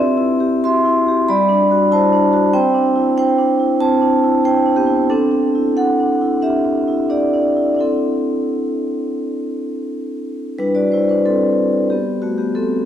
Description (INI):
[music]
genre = classical, contemporary piece for solo vibraphone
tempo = 85-96 BPM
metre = 4/4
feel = rubato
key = G major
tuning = A4 = 440 Hz
[part]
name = vibraphone with medium mallets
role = solo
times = 0.0-12.9 s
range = G3 to C6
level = -14 LUFS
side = equal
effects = none
[sound]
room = wet church reverb, RT60 3.6 s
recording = none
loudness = -14 LUFS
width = side -10 dB against mid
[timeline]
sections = 0.0-10.6 A section; 10.6-12.9 B section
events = none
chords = 0.0 C; 1.3 Gmaj7; 2.5 Cadd9; 5.1 D9sus4; 10.6 G6